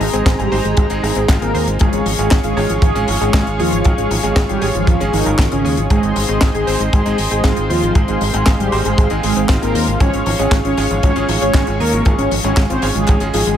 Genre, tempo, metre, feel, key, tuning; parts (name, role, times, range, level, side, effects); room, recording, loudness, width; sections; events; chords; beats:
italo disco; 117 BPM; 4/4; straight; A4 = 440 Hz
mellow synth brass; melody; 0.0-13.6 s; Db3 to Db5; -20 LUFS; right 1 dB; chorus, cassette tape, ping-pong delay
warm analog pad; sustained chords; 0.0-13.6 s; Ab4 to Db6; -23 LUFS; left 2 dB; chorus
analog pluck; arpeggios; 0.0-13.6 s; F3 to C5; -26 LUFS; left 2 dB; chorus, cassette tape, ping-pong delay
bright electric grand piano; stabs; 0.0-13.6 s; Ab3 to Db5; -24 LUFS; right 3 dB
fingered electric bass; bass; 0.0-13.6 s; Ab1 to Eb2; -20 LUFS; equal
tight funk drum kit; drums; 0.0-13.6 s; handclaps, hi-hat, snare drum; -22 LUFS; left 2 dB; studio reverb
kick drum; drums; 0.3-13.2 s; -15 LUFS; equal; studio reverb
light reverb, small room ambience; -13 LUFS; side -10 dB against mid
0.0-13.6 A section
0.0 Ab; 1.8 Db/Ab; 5.9 Ab; 10.0 Db/Ab
0.26 0.78 1.29 | 1.80 2.31 2.83 3.34 | 3.85 4.36 4.88 5.39 | 5.90 6.42 6.93 7.44 | 7.95 8.47 8.98 9.49 | 10.01 10.52 11.03 11.54 | 12.06 12.57 13.08